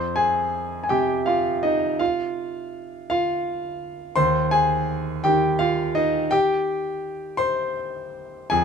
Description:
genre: neoclassical minimalist piano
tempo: 55 BPM (dotted quarters)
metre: 6/8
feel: uneven beats, rubato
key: unclear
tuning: A4 = 439 Hz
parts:
  - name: clear grand piano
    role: solo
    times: 0.0-8.6 s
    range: Eb2 to C6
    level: -21 LUFS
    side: equal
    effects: none
room: light reverb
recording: minimal, uncompressed stereo recording, faint mains hum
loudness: -20 LUFS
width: side -6 dB against mid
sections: 0.0-8.6 A section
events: none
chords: 0.0 Fmadd9; 4.2 Cm/Eb

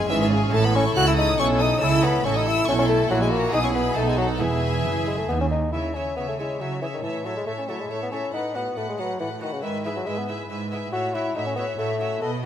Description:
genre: classical, baroque-style concerto movement with solo episodes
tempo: 139 BPM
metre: 3/4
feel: straight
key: E major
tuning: A4 = 440 Hz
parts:
  - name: mellow bassoon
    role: melody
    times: 0.0-12.3 s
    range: C#3 to A4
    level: -25 LUFS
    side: left 2 dB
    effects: none
  - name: rich chamber violin section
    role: melody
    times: 0.0-12.5 s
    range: C#5 to F#6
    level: -30 LUFS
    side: left 2 dB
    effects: none
  - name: rich chamber violin section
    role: second line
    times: 0.0-12.5 s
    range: F#4 to F#5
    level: -31 LUFS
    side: left 3 dB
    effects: none
  - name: dark chamber viola section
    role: accompaniment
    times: 0.0-12.5 s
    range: C#4 to C#5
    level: -31 LUFS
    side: right 2 dB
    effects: none
  - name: lute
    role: accompaniment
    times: 0.0-12.5 s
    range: D#2 to A4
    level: -35 LUFS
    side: equal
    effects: none
  - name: rich chamber double bass section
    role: bass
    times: 0.0-5.7 s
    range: E1 to D#2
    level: -27 LUFS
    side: right 2 dB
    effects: none
  - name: warm chamber cello section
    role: bass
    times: 0.0-12.5 s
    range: D#2 to C#3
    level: -28 LUFS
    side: right 4 dB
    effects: none
room: moderate scoring stage reverb, RT60 2.0 s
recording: none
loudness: -21 LUFS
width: side -10 dB against mid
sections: 0.0-5.7 A section; 5.7-12.5 B section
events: none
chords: 0.0 C#m; 0.5 A; 3.1 F#7/A#; 3.5 E/B; 4.0 B7; 4.4 E; 5.7 C#m; 7.0 A; 8.3 B5/A; 9.6 E/G#; 10.9 F#m7/A

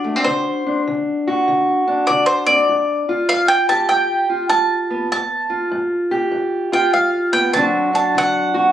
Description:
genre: acoustic country blues, solo or duo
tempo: 99 BPM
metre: 4/4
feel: swing 64% on 8ths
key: unclear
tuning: A4 = 440 Hz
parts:
  - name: bowl-back mandolin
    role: melody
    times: 0.0-8.7 s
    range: C5 to A5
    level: -16 LUFS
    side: right 1 dB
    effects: plate reverb
  - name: fingerpicked steel-string acoustic guitar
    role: accompaniment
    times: 0.0-8.7 s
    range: G2 to G4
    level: -19 LUFS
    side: equal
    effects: none
room: moderate small room ambience, RT60 0.5 s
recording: recorded on a phone in the room, club reverb, compression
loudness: -15 LUFS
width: side -10 dB against mid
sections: 0.0-8.7 A section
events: none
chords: 0.0 D7; 2.7 G7(no3); 7.5 D7

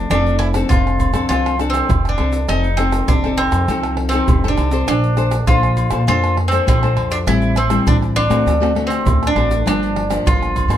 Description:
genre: samba and choro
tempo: 100 BPM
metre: 4/4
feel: straight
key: F major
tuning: A4 = 445 Hz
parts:
  - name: bowl-back mandolin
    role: melody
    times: 0.0-10.8 s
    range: C4 to F4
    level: -20 LUFS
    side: right 1 dB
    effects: plate reverb
  - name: nylon-string guitar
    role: accompaniment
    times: 0.0-10.8 s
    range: G2 to C5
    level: -21 LUFS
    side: left 4 dB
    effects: none
  - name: upright bass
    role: bass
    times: 0.0-10.8 s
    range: F1 to Bb2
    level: -19 LUFS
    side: equal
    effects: none
  - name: agogo bells, egg shaker, surdo, pandeiro and tamborim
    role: percussion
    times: 0.1-10.8 s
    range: none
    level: -20 LUFS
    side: right 1 dB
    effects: none
room: moderate studio reverb, RT60 1.0 s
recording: dark, warm production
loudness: -14 LUFS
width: side -11 dB against mid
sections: 0.1-10.8 A section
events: none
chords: 0.1 F6; 2.5 F7; 4.9 Bbmaj9; 7.3 Am7; 8.5 D7; 9.7 Gm7

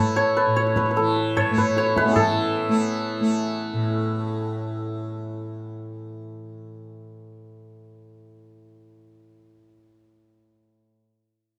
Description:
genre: indian classical, Hindustani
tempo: 151 BPM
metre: 5/4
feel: straight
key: A raga hamsadhwani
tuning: A4 = 440 Hz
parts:
  - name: santur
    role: melody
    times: 0.0-7.2 s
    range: E3 to E5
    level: -25 LUFS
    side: equal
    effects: none
  - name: tanpura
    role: drone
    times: 0.0-10.9 s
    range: A2 to A3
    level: -28 LUFS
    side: equal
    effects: none
  - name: tabla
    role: percussion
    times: 0.2-2.3 s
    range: none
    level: -29 LUFS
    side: equal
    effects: none
room: moderate small room reverb, RT60 0.6 s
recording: close, detailed microphones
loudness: -23 LUFS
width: mono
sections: 0.0-2.2 A section; 2.2-4.1 B section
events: none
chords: none

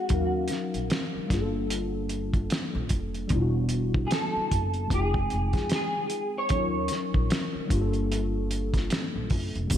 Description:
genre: R&B, neo-soul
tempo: 75 BPM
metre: 4/4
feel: swing 58% on 16ths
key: unclear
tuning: A4 = 436 Hz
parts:
  - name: electric guitar through a small old amp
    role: melody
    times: 0.0-7.9 s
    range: F#4 to C#5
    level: -30 LUFS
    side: right 1 dB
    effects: ensemble chorus, digital delay
  - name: mellow tine electric piano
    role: accompaniment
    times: 0.0-9.8 s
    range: F#3 to G5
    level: -31 LUFS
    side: left 3 dB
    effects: analog chorus
  - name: upright bass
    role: bass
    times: 0.1-9.8 s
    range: E1 to F2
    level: -30 LUFS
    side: equal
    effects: none
  - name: cloth-damped thuddy drum kit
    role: drums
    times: 0.1-9.8 s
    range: hi-hat, kick drum, snare drum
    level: -28 LUFS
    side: equal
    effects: gated reverb
  - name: tube shaker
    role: percussion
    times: 9.7-9.8 s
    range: none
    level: -34 LUFS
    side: right 2 dB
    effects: none
room: light reverb, small room ambience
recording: bright 1980s-style digital production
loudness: -25 LUFS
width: side -10 dB against mid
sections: 0.0-9.8 A section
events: none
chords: 0.1 D#m9; 1.3 Gm9; 3.3 Em9; 4.9 Fm9; 6.5 D#m9; 7.7 Gm9

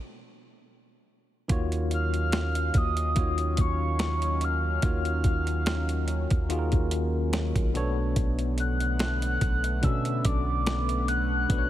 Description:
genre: contemporary R&B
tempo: 72 BPM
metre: 4/4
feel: swing 54% on 16ths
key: Eb minor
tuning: A4 = 439 Hz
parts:
  - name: bell-like tine electric piano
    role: accompaniment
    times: 1.5-11.7 s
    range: B2 to Db5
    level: -32 LUFS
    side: left 2 dB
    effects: medium stereo tremolo
  - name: chorused pulse-width pad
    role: sustained chords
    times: 1.5-11.7 s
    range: D3 to F5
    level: -36 LUFS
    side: right 1 dB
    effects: sidechain pumping
  - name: long sustained 808-style bass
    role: bass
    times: 1.5-11.7 s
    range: Cb2 to B2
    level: -28 LUFS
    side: equal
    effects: none
  - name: dusty soul sampler-style drum kit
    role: drums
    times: 1.5-11.7 s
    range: hi-hat, kick drum, snare drum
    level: -28 LUFS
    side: equal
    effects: none
  - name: soft octave-layered synth lead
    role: melody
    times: 1.9-11.7 s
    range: Db6 to F#6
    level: -31 LUFS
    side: left 1 dB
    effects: chorus, phaser
room: little or no reverb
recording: none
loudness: -24 LUFS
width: side -13 dB against mid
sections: 0.0-1.5 A section; 1.5-11.7 B section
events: stop 0.0-1.5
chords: 0.0 N.C.; 1.5 Ebm9; 7.7 Bm9

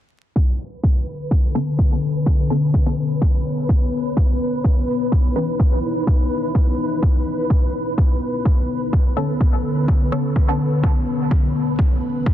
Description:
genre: dub techno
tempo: 126 BPM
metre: 4/4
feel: straight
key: B dorian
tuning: A4 = 439 Hz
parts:
  - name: deep dark ambient pad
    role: sustained chords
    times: 1.2-12.3 s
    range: D3 to G#5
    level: -23 LUFS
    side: left 2 dB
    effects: chorus, built-in reverb, sidechain pumping
  - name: electronic kick drum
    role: drums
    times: 0.4-12.3 s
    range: none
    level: -17 LUFS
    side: equal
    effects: overdrive
  - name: flickering grainy texture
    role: texture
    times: 1.0-12.3 s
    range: B4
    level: -30 LUFS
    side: right 1 dB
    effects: built-in reverb, sidechain pumping
  - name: filtered dub chord stab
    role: stabs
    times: 1.5-5.5, 9.2-11.8 s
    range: D3 to B4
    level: -27 LUFS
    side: left 1 dB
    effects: phaser, sidechain pumping, dub echo
room: little or no reverb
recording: dense, heavily limited modern master, vinyl crackle, low-pass filter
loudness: -17 LUFS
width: side -12 dB against mid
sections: 0.4-12.3 A section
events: filter sweep on synth stab 0.4-12.3; filter sweep on ambient pad 0.4-12.3; filter sweep 0.4-12.3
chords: 0.4 Bm9; 4.2 C#m9; 8.0 Bm9; 11.8 C#m9

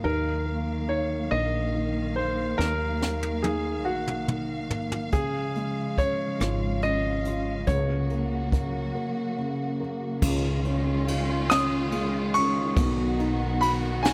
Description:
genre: six-eight pop ballad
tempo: 47 BPM (dotted quarters)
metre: 6/8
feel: straight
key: Db mixolydian from 10.2 s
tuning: A4 = 438 Hz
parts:
  - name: clear baby grand piano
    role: melody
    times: 0.0-14.1 s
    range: Gb4 to Eb6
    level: -31 LUFS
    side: equal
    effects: none
  - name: dark baby grand piano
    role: accompaniment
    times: 0.0-14.1 s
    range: Cb3 to Bb4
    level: -32 LUFS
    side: equal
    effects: none
  - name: warm studio string section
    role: sustained chords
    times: 0.0-14.1 s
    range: Db3 to F5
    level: -36 LUFS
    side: equal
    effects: none
  - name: woody fretless electric bass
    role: bass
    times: 0.0-14.1 s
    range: Ab1 to Eb2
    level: -32 LUFS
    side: equal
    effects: subtle chorus
  - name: jazz brush drum kit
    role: drums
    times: 2.6-14.1 s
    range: crash cymbal, hi-hat, kick drum, ride cymbal, rim click, snare drum, toms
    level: -32 LUFS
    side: equal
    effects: none
room: studio ambience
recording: none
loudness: -27 LUFS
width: mono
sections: 0.0-10.2 A section; 10.2-14.1 B section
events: drum fill 2.6-5.1; break 9.0-10.2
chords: 0.0 Ebmadd9; 5.1 Db; 7.7 Gb/Db; 10.2 Dbadd9; 12.8 Cb

